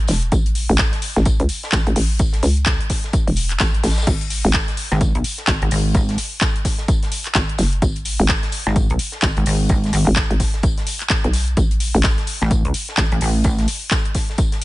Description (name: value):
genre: bass house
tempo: 128 BPM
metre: 4/4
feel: swing 61% on 16ths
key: unclear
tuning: A4 = 440 Hz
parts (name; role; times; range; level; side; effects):
- hollow knocking FM bass; bass; 0.0-13.1 s; E1 to C#2; -18 LUFS; equal; overdrive, sidechain pumping
- crisp fusion drum kit; drums; 0.1-14.6 s; hi-hat, snare drum, tambourine; -31 LUFS; left 2 dB; sidechain pumping on hats, high-pass filter on hats, high-pass filter on snare, sidechain pumping on perc, high-pass filter on perc, high-pass filter on room
- house drum kit; drums; 0.1-14.6 s; crash cymbal, handclaps, hi-hat; -23 LUFS; left 1 dB; none
- electronic kick drum; drums; 0.3-14.5 s; none; -20 LUFS; equal; none
- pulsing pluck wobble bass; bass; 4.9-13.7 s; G#1 to C#2; -18 LUFS; equal; chorus, overdrive, sidechain pumping
room: little or no reverb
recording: nothing above 10.7 kHz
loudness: -16 LUFS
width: side -18 dB against mid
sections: 0.0-14.6 A section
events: none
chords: 0.0 A5; 4.1 N.C.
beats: | 0.32 0.79 1.26 1.73 | 2.20 2.66 3.13 3.60 | 4.07 4.54 5.01 5.48 | 5.95 6.41 6.88 7.35 | 7.82 8.29 8.76 9.23 | 9.70 10.16 10.63 11.10 | 11.57 12.04 12.51 12.98 | 13.45 13.91 14.38